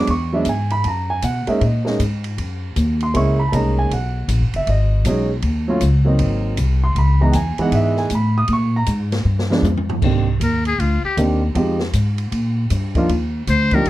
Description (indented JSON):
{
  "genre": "jazz, small-group swing and bop",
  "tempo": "157 BPM",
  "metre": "4/4",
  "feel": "swing 64% on 8ths",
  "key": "C minor from 10.0 s",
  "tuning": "A4 = 436 Hz",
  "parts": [
    { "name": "warm grand piano", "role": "accompaniment", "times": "0.0-13.9 s", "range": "Eb3 to D#6", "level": "-20 LUFS", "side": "right 2 dB", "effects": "none" },
    { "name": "upright bass", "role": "bass", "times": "0.0-13.9 s", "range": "F#1 to B2", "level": "-18 LUFS", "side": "equal", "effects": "none" },
    { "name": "open jazz drum kit", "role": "drums", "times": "0.1-13.9 s", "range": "crash cymbal, hi-hat, kick drum, ride cymbal, snare drum, toms", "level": "-26 LUFS", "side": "right 1 dB", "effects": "none" },
    { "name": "trumpet with metal mute", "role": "melody", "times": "10.4-11.2, 13.5-13.9 s", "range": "F4 to C5", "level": "-20 LUFS", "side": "left 4 dB", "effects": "none" }
  ],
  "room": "light reverb",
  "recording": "dark, warm production",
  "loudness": "-16 LUFS",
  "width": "side -15 dB against mid",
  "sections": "0.0-10.0 A section; 10.0-13.9 A section",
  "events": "drum fill 9.3-10.0; muted trumpet solo 10.0-13.9",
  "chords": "0.1 E9; 0.8 F#6; 2.4 F#7; 3.9 B69; 5.4 D#m7b5; 6.2 G#7; 7.0 C#m9; 8.5 G#sus24; 9.3 G7b9; 10.0 Cm9; 11.6 Fm7; 12.3 Bb6; 13.1 Ebmaj7",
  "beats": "0.09 0.47 | 0.85 1.23 1.62 2.00 | 2.38 2.76 3.15 3.53 | 3.91 4.29 4.67 5.05 | 5.44 5.82 6.20 6.58 | 6.96 7.35 7.73 8.11 | 8.49 8.88 9.26 9.64 | 10.03 10.41 10.79 11.17 | 11.56 11.94 12.32 12.71 | 13.09 13.47 13.85"
}